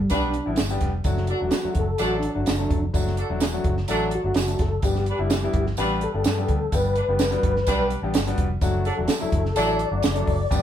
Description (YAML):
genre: uptempo 1960s-style soul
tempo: 127 BPM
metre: 4/4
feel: straight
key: G major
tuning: A4 = 438 Hz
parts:
  - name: mellow tonewheel organ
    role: melody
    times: 0.0-10.6 s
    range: G3 to D5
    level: -26 LUFS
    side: left 1 dB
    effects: chorus vibrato, stopped rotary speaker
  - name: vintage muted fingered electric bass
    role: bass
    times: 0.0-10.6 s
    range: E1 to G2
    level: -26 LUFS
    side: equal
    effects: none
  - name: warm horn section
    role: second line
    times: 0.1-9.9 s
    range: F#3 to B4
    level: -26 LUFS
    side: right 1 dB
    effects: none
  - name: clear upright piano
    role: accompaniment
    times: 0.1-10.6 s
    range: F#3 to A4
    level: -28 LUFS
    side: left 4 dB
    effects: none
  - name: compact cocktail drum kit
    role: drums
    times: 0.1-10.6 s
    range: hi-hat, kick drum, snare drum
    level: -25 LUFS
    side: right 2 dB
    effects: none
  - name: tambourine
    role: percussion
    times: 0.1-10.6 s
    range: none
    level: -38 LUFS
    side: right 6 dB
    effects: none
room: moderate studio reverb, RT60 0.8 s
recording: band playing live in one room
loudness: -20 LUFS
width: side -10 dB against mid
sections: 0.0-10.6 A section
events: tonewheel organ solo 0.0-10.6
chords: 0.0 G; 1.1 D; 4.8 G; 8.6 D